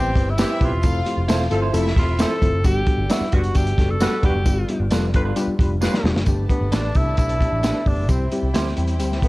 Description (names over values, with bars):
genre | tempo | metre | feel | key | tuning
uptempo 1960s-style soul | 132 BPM | 4/4 | straight | G major | A4 = 440 Hz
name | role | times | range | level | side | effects
clear tenor saxophone | melody | 0.0-9.3 s | B3 to A4 | -26 LUFS | equal | analog delay
mellow horn section | second line | 0.0-6.2 s | B2 to B4 | -30 LUFS | equal | none
warm symphonic violin section | second line | 0.0-2.4, 6.3-9.3 s | D4 to A5 | -31 LUFS | left 1 dB | none
reed electric piano | accompaniment | 0.0-9.3 s | G3 to B4 | -26 LUFS | left 2 dB | none
percussive tonewheel organ | sustained chords | 0.0-9.3 s | F3 to B4 | -35 LUFS | right 1 dB | none
vintage muted picked electric bass | bass | 0.0-9.3 s | E1 to E2 | -23 LUFS | equal | none
crunchy breakbeat drum kit | drums | 0.2-9.3 s | hi-hat, kick drum, snare drum | -21 LUFS | equal | vintage 12-bit sampler grit
electric guitar through a small old amp | stabs | 0.4-8.7 s | D4 to C5 | -31 LUFS | right 6 dB | spring reverb
tambourine | percussion | 0.4-9.1 s | none | -38 LUFS | left 2 dB | none
room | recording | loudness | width
light reverb | dark, warm production | -17 LUFS | side -20 dB against mid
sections
0.0-6.3 A section; 6.3-9.3 B section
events
drum fill 5.8-6.3; tenor saxophone solo 6.3-9.3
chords
0.0 Cmaj7; 0.8 Fmaj7; 2.6 Gmaj7; 4.5 G7; 6.3 Gadd9; 8.1 C